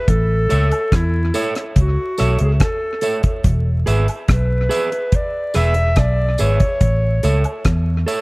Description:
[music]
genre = roots reggae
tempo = 71 BPM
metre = 4/4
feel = straight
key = unclear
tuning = A4 = 442 Hz
[part]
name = mellow clarinet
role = melody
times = 0.0-7.7 s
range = E4 to E5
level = -22 LUFS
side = equal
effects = tape echo
[part]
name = vintage muted fingered electric bass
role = bass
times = 0.1-8.0 s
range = E1 to E2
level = -16 LUFS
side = equal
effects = none
[part]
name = deep reggae drum kit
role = drums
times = 0.1-8.2 s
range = hi-hat, kick drum, rim click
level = -18 LUFS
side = equal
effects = none
[part]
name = electric guitar at the edge of break-up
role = accompaniment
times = 0.5-8.2 s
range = G#4 to E5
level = -24 LUFS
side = right 3 dB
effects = tape echo
[part]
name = tambourine and woodblock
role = percussion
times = 0.5-8.2 s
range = none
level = -33 LUFS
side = right 1 dB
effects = none
[sound]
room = light reverb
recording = vinyl crackle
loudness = -15 LUFS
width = side -24 dB against mid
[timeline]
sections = 0.0-8.2 A section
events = none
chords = 0.1 A; 3.4 E; 6.8 A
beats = | 0.08 0.92 1.76 2.60 | 3.44 4.29 5.13 5.97 | 6.81 7.65

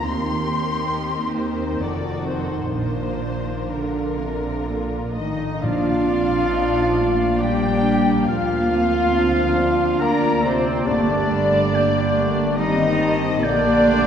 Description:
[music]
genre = classical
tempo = 61-73 BPM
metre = 3/4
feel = rubato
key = Bb major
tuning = A4 = 441 Hz
[part]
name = muted symphonic violin section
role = melody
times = 0.0-14.1 s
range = Bb4 to C6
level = -29 LUFS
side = left 4 dB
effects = none
[part]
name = muted studio violin section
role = second line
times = 0.0-14.1 s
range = F4 to Bb5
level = -30 LUFS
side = left 4 dB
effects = none
[part]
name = muted symphonic viola section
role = accompaniment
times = 0.0-14.1 s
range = D3 to G4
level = -27 LUFS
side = equal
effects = none
[part]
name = muted symphonic cello section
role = bass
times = 0.0-14.1 s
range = Eb2 to Eb4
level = -26 LUFS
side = right 2 dB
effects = none
[part]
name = muted symphonic double bass section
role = bass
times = 0.0-14.1 s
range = F1 to Eb2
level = -28 LUFS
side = right 3 dB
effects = none
[part]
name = mellow hollow flute section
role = second line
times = 5.2-14.1 s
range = C5 to Bb5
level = -26 LUFS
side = left 1 dB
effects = none
[part]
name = warm French horn section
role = sustained chords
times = 5.2-14.1 s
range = C3 to Bb3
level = -26 LUFS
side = left 2 dB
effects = none
[part]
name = mellow trumpet section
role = stabs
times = 5.2-14.1 s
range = C4 to Bb4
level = -23 LUFS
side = right 1 dB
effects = none
[part]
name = warm clarinet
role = second line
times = 5.6-14.1 s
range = G3 to D4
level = -27 LUFS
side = left 2 dB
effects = none
[part]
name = warm oboe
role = second line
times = 5.6-14.1 s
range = D5 to Bb5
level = -30 LUFS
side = right 1 dB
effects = none
[part]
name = timpani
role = percussion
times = 5.6-6.9 s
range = Bb2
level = -30 LUFS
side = left 1 dB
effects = none
[sound]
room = wet concert hall reverb, RT60 2.2 s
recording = heard from further back in the room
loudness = -18 LUFS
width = side -8 dB against mid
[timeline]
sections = 0.0-5.6 A section; 5.6-14.1 A section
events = none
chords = 0.1 Cm7/Eb; 1.8 F7b9; 2.8 Bb; 8.3 Bb/D; 10.9 Gm; 13.4 Gm/Bb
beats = | 0.07 0.92 1.83 | 2.76 3.72 4.69 | 5.63 6.53 7.41 | 8.28 9.15 10.01 | 10.88 11.73 12.58 | 13.44

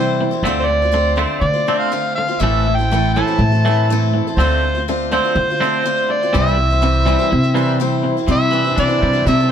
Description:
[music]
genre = folk rock and heartland rock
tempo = 122 BPM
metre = 4/4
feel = straight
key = D minor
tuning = A4 = 437 Hz
[part]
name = overdriven harmonica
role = melody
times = 0.0-9.5 s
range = C5 to A5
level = -19 LUFS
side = right 1 dB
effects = digital delay
[part]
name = picked steel-string acoustic guitar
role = accompaniment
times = 0.0-9.5 s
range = A2 to C5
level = -21 LUFS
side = left 2 dB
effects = none
[part]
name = twangy electric guitar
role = riff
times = 0.0-9.5 s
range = A2 to D4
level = -21 LUFS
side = right 2 dB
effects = wide subtle chorus
[part]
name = upright bass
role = bass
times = 0.0-9.5 s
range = A1 to D3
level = -18 LUFS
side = equal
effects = none
[sound]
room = light reverb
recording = none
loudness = -14 LUFS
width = side -8 dB against mid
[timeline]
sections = 0.0-8.3 A section; 8.3-9.5 B section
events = none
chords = 0.4 Dm7; 2.4 Am; 4.4 Dm7; 6.3 C; 8.3 Cadd9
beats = | 0.44 0.94 1.43 1.92 | 2.41 2.90 3.40 3.89 | 4.38 4.87 5.36 5.85 | 6.34 6.83 7.31 7.80 | 8.29 8.78 9.26

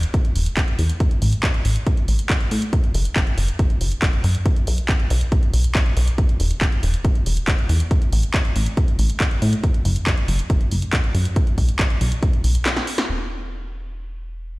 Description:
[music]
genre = uplifting trance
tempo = 139 BPM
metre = 4/4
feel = straight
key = unclear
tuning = A4 = 438 Hz
[part]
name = plucky analog bass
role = bass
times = 0.0-14.6 s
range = E1 to A2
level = -19 LUFS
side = equal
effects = tube saturation, sidechain pumping
[part]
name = punchy analog drum machine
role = drums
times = 0.0-13.2 s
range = crash cymbal, handclaps, hi-hat, snare drum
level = -26 LUFS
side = equal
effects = sidechain pumping on hats, low-pass filter on hats, low-pass filter on snare, sidechain pumping on cymbals, low-pass filter on cymbals
[part]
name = electronic kick drum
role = drums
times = 0.1-12.3 s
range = none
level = -19 LUFS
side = equal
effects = none
[sound]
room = digital ambience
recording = played on a big sound system in a bare room, stone room reverb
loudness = -17 LUFS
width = side -22 dB against mid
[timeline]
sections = 0.0-13.1 A section; 13.1-14.6 B section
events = break 12.7-13.1; drum fill 12.7-13.1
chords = none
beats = 0.14 0.57 | 1.00 1.43 1.87 2.30 | 2.73 3.16 3.59 4.02 | 4.46 4.89 5.32 5.75 | 6.18 6.61 7.05 7.48 | 7.91 8.34 8.77 9.20 | 9.64 10.07 10.50 10.93 | 11.36 11.79 12.23 12.66 | 13.09 13.52 13.95 14.38

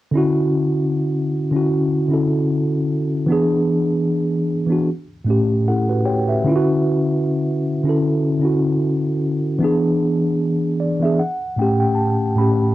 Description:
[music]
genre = hip hop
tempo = 76 BPM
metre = 4/4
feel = swing 57% on 16ths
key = D major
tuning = A4 = 440 Hz
[part]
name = mellow tine electric piano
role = accompaniment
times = 0.1-12.7 s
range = A2 to B5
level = -16 LUFS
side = equal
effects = medium stereo tremolo
[sound]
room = wet small room reverb, RT60 0.5 s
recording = worn, warbling old tape, cassette tape, warbly pitch drift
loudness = -16 LUFS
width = side -15 dB against mid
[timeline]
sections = 0.1-12.7 A section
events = tine electric piano fill 5.3-6.5, 10.4-12.7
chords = 0.1 Dmaj9; 3.3 E7; 4.9 A7; 6.5 Dmaj9; 9.6 E7; 11.2 A7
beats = | 0.14 0.93 1.72 2.51 | 3.30 4.09 4.88 5.67 | 6.46 7.25 8.04 8.82 | 9.61 10.40 11.19 11.98

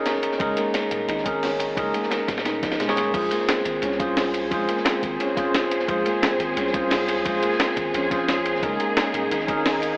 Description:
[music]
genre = liquid drum and bass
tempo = 175 BPM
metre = 4/4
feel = straight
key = Bb minor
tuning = A4 = 440 Hz
[part]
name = tine electric piano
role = accompaniment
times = 0.0-10.0 s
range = Db4 to Db5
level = -27 LUFS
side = equal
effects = overdrive, tape echo
[part]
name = felt-muted upright piano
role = arpeggios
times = 0.0-10.0 s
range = Ab3 to Eb4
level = -32 LUFS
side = equal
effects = tape echo
[part]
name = breakbeat sampler-style drum kit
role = drums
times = 0.1-9.9 s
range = crash cymbal, hi-hat, snare drum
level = -29 LUFS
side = equal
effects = small room ambience
[part]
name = crunchy breakbeat drum kit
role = drums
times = 0.1-9.9 s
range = hi-hat, ride cymbal, snare drum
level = -32 LUFS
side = equal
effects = high-pass filter on cymbals, small room ambience, high-pass filter on hats, high-pass filter on snare, high-pass filter on room
[part]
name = long sustained 808-style bass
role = bass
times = 0.4-10.0 s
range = Eb1 to C2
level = -40 LUFS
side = equal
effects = none
[part]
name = electronic kick drum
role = drums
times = 0.4-9.6 s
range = none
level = -35 LUFS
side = equal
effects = overdrive, small room ambience
[part]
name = dark studio string section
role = sustained chords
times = 3.1-10.0 s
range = Bb3 to C5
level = -31 LUFS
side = equal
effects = sidechain pumping
[sound]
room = moderate scoring stage reverb, RT60 1.9 s, studio reverb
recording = AM radio sound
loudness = -23 LUFS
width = mono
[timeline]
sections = 0.0-10.0 A section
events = none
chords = 0.0 Gb69 (rootless); 3.1 Bbm9; 8.6 Gb69 (rootless)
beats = 0.06 | 0.40 0.74 1.09 1.43 | 1.77 2.12 2.46 2.80 | 3.14 3.49 3.83 4.17 | 4.51 4.86 5.20 5.54 | 5.89 6.23 6.57 6.92 | 7.26 7.60 7.94 8.29 | 8.63 8.97 9.31 9.66

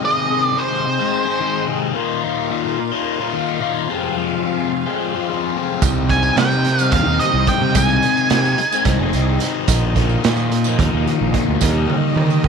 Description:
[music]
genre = psychedelic rock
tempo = 217 BPM (eighths)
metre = 7/8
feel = straight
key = unclear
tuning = A4 = 440 Hz
[part]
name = octave-fuzz lead guitar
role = melody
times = 0.0-1.6, 6.1-8.8 s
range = C5 to Ab5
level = -19 LUFS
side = right 2 dB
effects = distortion, slapback echo
[part]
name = clear symphonic string section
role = sustained chords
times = 0.0-12.5 s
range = Bb3 to F5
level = -28 LUFS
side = right 15 dB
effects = none
[part]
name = crunchy overdriven guitar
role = riff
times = 0.0-12.5 s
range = F2 to Ab4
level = -20 LUFS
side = left 14 dB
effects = phaser
[part]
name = fuzz fingered electric bass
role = bass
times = 5.8-12.4 s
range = F1 to Eb3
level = -19 LUFS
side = right 2 dB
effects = overdrive
[part]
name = raw garage drum kit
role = drums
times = 5.8-12.5 s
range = hi-hat, kick drum, snare drum, toms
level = -20 LUFS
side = right 5 dB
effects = none
[part]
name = tambourine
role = percussion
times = 5.8-12.4 s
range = none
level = -30 LUFS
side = right 20 dB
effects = none
[sound]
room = small room ambience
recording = 1960s-style stereo with parts hard left and right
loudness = -15 LUFS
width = side -5 dB against mid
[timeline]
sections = 0.0-12.5 A section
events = drum fill 11.9-12.5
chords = 0.0 Ab/C; 1.9 Bbsus4; 3.9 Fm; 5.8 Cm; 7.8 Ab/C; 9.7 Bbsus4; 11.6 Eb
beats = | 0.01 0.29 0.56 0.84 1.12 1.39 1.67 | 1.95 2.22 2.50 2.78 3.05 3.33 3.61 | 3.88 4.16 4.44 4.71 4.99 5.27 5.54 | 5.82 6.10 6.37 6.65 6.92 7.20 7.48 | 7.75 8.03 8.31 8.58 8.86 9.13 9.41 | 9.69 9.96 10.24 10.52 10.79 11.07 11.34 | 11.62 11.89 12.17 12.44

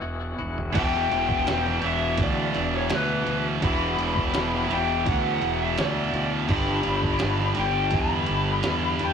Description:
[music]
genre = quiet-loud alternative rock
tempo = 84 BPM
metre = 4/4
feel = straight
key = E minor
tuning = A4 = 440 Hz
[part]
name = twangy electric guitar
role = arpeggios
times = 0.0-0.7 s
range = E2 to F#4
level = -33 LUFS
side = left 4 dB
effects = tremolo
[part]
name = fuzz fingered electric bass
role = bass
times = 0.0-9.1 s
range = E1 to E2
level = -29 LUFS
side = right 1 dB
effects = overdrive
[part]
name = lo-fi sampler-style drum kit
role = drums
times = 0.4-9.1 s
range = crash cymbal, kick drum, ride cymbal, snare drum, toms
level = -30 LUFS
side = right 1 dB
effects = none
[part]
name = lead guitar through a small cranked amp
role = melody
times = 0.7-9.1 s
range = B4 to B5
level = -27 LUFS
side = left 3 dB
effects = overdrive
[part]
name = scooped high-gain guitar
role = riff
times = 0.7-9.1 s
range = E2 to G3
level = -28 LUFS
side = right 6 dB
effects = distortion
[part]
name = thick fuzz guitar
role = riff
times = 0.7-9.1 s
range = E2 to G3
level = -29 LUFS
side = left 3 dB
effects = distortion
[sound]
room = moderate booth ambience, RT60 0.3 s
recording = rough rehearsal-room recording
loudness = -22 LUFS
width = side -7 dB against mid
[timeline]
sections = 0.7-9.1 A section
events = break 0.0-0.7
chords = 0.0 Esus2; 0.7 Em; 6.5 G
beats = 0.02 | 0.74 1.46 2.18 2.90 | 3.62 4.33 5.05 5.77 | 6.49 7.21 7.93 8.65

